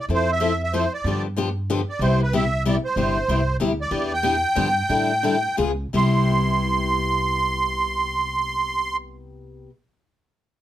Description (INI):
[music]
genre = acoustic string swing (jazz manouche)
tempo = 160-188 BPM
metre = 3/4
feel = swing 59% on 8ths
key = C major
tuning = A4 = 438 Hz
[part]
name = musette accordion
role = melody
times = 0.0-9.0 s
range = B4 to C6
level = -22 LUFS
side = right 2 dB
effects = none
[part]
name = picked steel-string acoustic guitar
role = accompaniment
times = 0.1-9.7 s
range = C3 to A4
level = -25 LUFS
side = left 4 dB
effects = none
[part]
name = upright bass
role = bass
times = 0.1-9.7 s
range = G1 to A2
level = -26 LUFS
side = right 1 dB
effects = none
[sound]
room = light reverb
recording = none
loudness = -20 LUFS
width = side -12 dB against mid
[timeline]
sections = 0.0-3.9 A section; 3.9-6.0 B section; 6.0-8.2 C section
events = slowing down 3.9-6.0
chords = 0.1 Fmaj7; 1.0 G7; 2.0 Cmaj7; 3.9 Em7; 4.6 G7; 4.9 A7sus4; 5.6 Db7; 6.0 Cmaj7